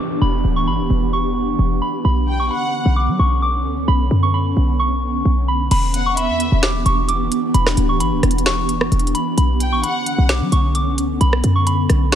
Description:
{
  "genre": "hip hop, trap",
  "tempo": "131 BPM",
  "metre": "4/4",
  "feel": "half-time",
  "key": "unclear",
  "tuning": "A4 = 440 Hz",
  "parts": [
    { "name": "ethereal airy pad", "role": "sustained chords", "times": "0.0-12.2 s", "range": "D3 to G4", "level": "-22 LUFS", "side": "equal", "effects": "ensemble chorus, built-in reverb" },
    { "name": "downlifter", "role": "sound effects", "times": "0.0-2.0 s", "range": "none", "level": "-37 LUFS", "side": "equal", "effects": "none" },
    { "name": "soft synth bell", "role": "melody", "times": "0.2-12.2 s", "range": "B5 to D6", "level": "-22 LUFS", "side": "equal", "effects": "chorus, phaser, low-pass filter, tape echo" },
    { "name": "short 808-style bass", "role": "bass", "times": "0.2-12.2 s", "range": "D1 to F#3", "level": "-18 LUFS", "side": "equal", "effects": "none" },
    { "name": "dark studio violin section", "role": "second line", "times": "2.3-2.9, 5.9-6.6, 9.6-10.3 s", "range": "E5 to G5", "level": "-25 LUFS", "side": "equal", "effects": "tape echo" },
    { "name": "trap drum kit", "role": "drums", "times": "5.7-12.2 s", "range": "crash cymbal, hi-hat, rim click, snare drum", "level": "-21 LUFS", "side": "equal", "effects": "vintage 12-bit sampler grit" }
  ],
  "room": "little or no reverb",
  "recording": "none",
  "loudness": "-15 LUFS",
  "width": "side -10 dB against mid",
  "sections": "0.0-5.7 A section; 5.7-12.2 B section",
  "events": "none",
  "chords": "0.0 Em7; 2.0 Bmadd9; 5.7 Em7; 9.4 Bmadd9"
}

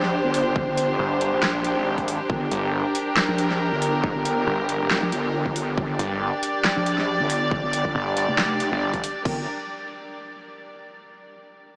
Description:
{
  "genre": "heavy wobble dubstep",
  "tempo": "138 BPM",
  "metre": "4/4",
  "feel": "swing 54% on 16ths, half-time",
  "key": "G minor",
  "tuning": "A4 = 440 Hz",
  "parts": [
    { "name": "dark chamber string section", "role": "sustained chords", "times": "0.0-9.5 s", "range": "D4 to D5", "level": "-27 LUFS", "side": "equal", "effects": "sidechain pumping" },
    { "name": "wobble bass", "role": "bass", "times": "0.0-9.5 s", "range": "F1 to Bb1", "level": "-29 LUFS", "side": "equal", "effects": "chorus, overdrive" },
    { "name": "big-room dance drum kit", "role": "drums", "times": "0.0-9.3 s", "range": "crash cymbal, handclaps, hi-hat, snare drum", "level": "-30 LUFS", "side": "equal", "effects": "overdrive" },
    { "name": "electronic kick drum", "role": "drums", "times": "0.6-9.3 s", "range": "none", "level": "-31 LUFS", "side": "equal", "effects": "overdrive" },
    { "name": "snarling distorted saw bass", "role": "bass", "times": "1.0-9.0 s", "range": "F1 to Bb1", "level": "-29 LUFS", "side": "equal", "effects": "distortion, overdrive" }
  ],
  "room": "wet huge ambient reverb, RT60 8.0 s",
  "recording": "dreamy mix soaked in reverb, small speaker sound",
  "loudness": "-24 LUFS",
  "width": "mono",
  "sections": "0.0-9.3 A section; 9.3-11.0 B section",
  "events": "drop 0.0-9.3",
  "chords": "0.0 Gm"
}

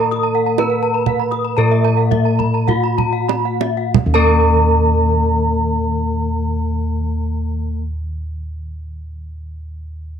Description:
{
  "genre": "Balinese gamelan",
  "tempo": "44-68 BPM",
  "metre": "4/4",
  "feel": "straight",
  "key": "unclear",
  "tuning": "A4 = 440 Hz",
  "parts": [
    { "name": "gamelan-type bronze metallophone", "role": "melody", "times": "0.0-7.8 s", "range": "Gb4-50c to Cb5-40c", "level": "-21 LUFS", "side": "right 1 dB", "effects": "none" },
    { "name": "gamelan-type bronze metallophone", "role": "accompaniment", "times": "0.0-7.8 s", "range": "Bb3-45c", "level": "-24 LUFS", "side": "left 12 dB", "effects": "none" },
    { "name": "gamelan-type bronze metallophone", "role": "arpeggios", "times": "0.0-7.8 s", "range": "Fb5 to Eb6", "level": "-23 LUFS", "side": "left 6 dB", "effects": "none" },
    { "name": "gamelan-type bossed gongs", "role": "bass", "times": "0.0-7.7 s", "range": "Eb2 to Bb4-45c", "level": "-19 LUFS", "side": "equal", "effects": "none" },
    { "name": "kendang", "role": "percussion", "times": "0.1-4.6 s", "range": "none", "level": "-19 LUFS", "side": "right 8 dB", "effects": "none" },
    { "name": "gamelan-type bronze metallophone", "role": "arpeggios", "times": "0.2-7.8 s", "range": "Fb5 to Cb6-40c", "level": "-23 LUFS", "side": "right 9 dB", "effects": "none" }
  ],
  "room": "wet spring reverb, RT60 1.3 s, studio ambience",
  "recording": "1960s-style stereo with parts hard left and right",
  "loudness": "-14 LUFS",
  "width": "side -8 dB against mid",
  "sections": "0.0-3.9 A section; 3.9-9.3 B section",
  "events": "slowing down 0.0-3.9; drum fill 2.4-3.9",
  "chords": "none"
}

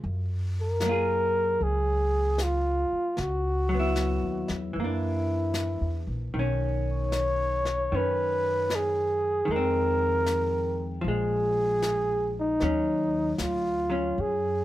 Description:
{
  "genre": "jazz ballad",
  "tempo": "77 BPM",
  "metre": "4/4",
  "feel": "swing 68% on 8ths",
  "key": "unclear",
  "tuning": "A4 = 440 Hz",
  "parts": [
    { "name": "vintage hollow-body jazz guitar", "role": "accompaniment", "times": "0.0-14.6 s", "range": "D#3 to Ab4", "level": "-32 LUFS", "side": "left 1 dB", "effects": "none" },
    { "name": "upright bass", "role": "bass", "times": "0.0-14.6 s", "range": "Bb1 to Gb2", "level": "-30 LUFS", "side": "equal", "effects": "none" },
    { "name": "jazz brush drum kit", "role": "drums", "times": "0.0-14.6 s", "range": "brushed snare drum, hi-hat, snare drum", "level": "-39 LUFS", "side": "left 2 dB", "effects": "none" },
    { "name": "breathy flugelhorn", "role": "melody", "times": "0.6-14.6 s", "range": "Eb4 to C#5", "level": "-26 LUFS", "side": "equal", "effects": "plate reverb" }
  ],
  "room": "light reverb",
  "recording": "none",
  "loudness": "-24 LUFS",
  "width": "side -14 dB against mid",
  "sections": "0.0-14.6 A section",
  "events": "none",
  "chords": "0.0 Gbmaj9; 3.2 Dbm11; 4.7 Gbaug7; 6.3 Badd9; 9.5 Fm7; 11.0 Bb5; 12.6 Ebm9"
}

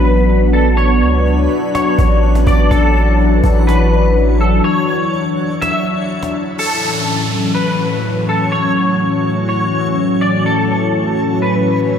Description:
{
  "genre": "hip hop, atmospheric cloud-rap",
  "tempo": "124 BPM",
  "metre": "4/4",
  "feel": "half-time",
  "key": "A major",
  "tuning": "A4 = 440 Hz",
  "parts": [
    { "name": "electric guitar at the edge of break-up", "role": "melody", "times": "0.0-12.0 s", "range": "A4 to E5", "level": "-18 LUFS", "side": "left 1 dB", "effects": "ensemble chorus, low-pass filter, ping-pong delay" },
    { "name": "dark analog pad", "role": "sustained chords", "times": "0.0-12.0 s", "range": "A2 to D4", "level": "-16 LUFS", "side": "left 1 dB", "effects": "chorus" },
    { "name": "long sustained 808-style bass", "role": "bass", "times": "0.0-4.6 s", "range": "A1 to C#2", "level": "-13 LUFS", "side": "equal", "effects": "none" },
    { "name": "cajon", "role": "drums", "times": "0.0-6.3 s", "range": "none", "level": "-26 LUFS", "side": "equal", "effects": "none" },
    { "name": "backwards swelling texture", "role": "texture", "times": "0.0-12.0 s", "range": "F#3 to C#5", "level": "-28 LUFS", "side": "equal", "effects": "built-in reverb" },
    { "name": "downlifter and riser", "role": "sound effects", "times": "6.6-12.0 s", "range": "none", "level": "-25 LUFS", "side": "right 2 dB", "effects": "none" }
  ],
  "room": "wet church reverb, RT60 4.1 s",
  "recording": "dreamy mix soaked in reverb",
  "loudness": "-12 LUFS",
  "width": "side -8 dB against mid",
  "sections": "0.0-6.6 A section; 6.6-12.0 B section",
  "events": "break 4.6-6.6",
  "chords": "0.0 D69/A; 2.7 Esus2/A; 6.6 A6"
}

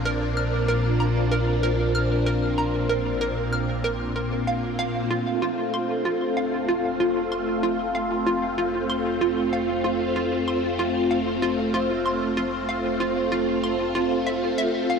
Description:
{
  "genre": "ambient, sequencer-driven space music",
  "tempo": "95 BPM",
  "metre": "4/4",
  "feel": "straight",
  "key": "F major",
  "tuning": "A4 = 441 Hz",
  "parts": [
    { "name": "phased string machine", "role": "sustained chords", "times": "0.0-15.0 s", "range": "Bb2 to F4", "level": "-23 LUFS", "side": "equal", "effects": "ensemble chorus, phaser, shimmer reverb" },
    { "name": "fat analog bass", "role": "bass", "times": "0.0-15.0 s", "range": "F1 to Bb1", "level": "-30 LUFS", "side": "equal", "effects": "none" },
    { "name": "hollow square pluck", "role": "riff", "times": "0.1-15.0 s", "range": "F4 to F6", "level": "-28 LUFS", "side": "right 2 dB", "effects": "lush chorus, analog delay, shimmer reverb" }
  ],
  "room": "wet huge ambient reverb, RT60 7.3 s",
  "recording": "none",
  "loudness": "-22 LUFS",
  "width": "side -6 dB against mid",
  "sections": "0.0-5.1 A section; 5.1-15.0 B section",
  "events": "fade-in on analog synth bass 5.1-15.0",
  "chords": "0.0 Bbadd9; 5.1 F"
}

